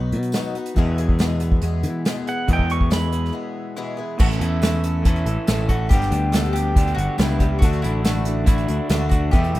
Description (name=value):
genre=folk rock and heartland rock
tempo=140 BPM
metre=4/4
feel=straight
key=A mixolydian from 4.2 s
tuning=A4 = 440 Hz
part: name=picked swing-style acoustic guitar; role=accompaniment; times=0.0-9.6 s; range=E2 to G#4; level=-31 LUFS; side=left 6 dB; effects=plate reverb
part: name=mellow tonewheel organ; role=sustained chords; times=0.0-4.2 s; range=F#4 to B5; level=-40 LUFS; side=equal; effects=slow rotary speaker, plate reverb
part: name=electric guitar through a small old amp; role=riff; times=0.0-9.6 s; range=E2 to A4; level=-27 LUFS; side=left 1 dB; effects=none
part: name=picked electric bass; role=bass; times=0.0-9.6 s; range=G1 to E3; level=-22 LUFS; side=equal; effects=none
part: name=unplugged drum kit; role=drums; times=0.1-9.6 s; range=crash cymbal, hi-hat, kick drum, snare drum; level=-20 LUFS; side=equal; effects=none
part: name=tambourine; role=percussion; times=0.3-9.0 s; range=none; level=-44 LUFS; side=right 5 dB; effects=none
part: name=pedal steel guitar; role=second line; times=2.3-3.3 s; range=F#5 to C#6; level=-26 LUFS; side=right 4 dB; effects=plate reverb
part: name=mandolin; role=melody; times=3.8-9.6 s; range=E4 to A4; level=-28 LUFS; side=right 1 dB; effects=plate reverb
room=little or no reverb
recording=rough home demo mix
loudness=-18 LUFS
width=side -16 dB against mid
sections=0.0-4.2 A section; 4.2-9.6 B section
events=pedal steel guitar solo 0.0-4.2; break 3.3-4.2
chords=0.0 B; 0.8 E; 4.2 A; 5.9 G; 7.6 D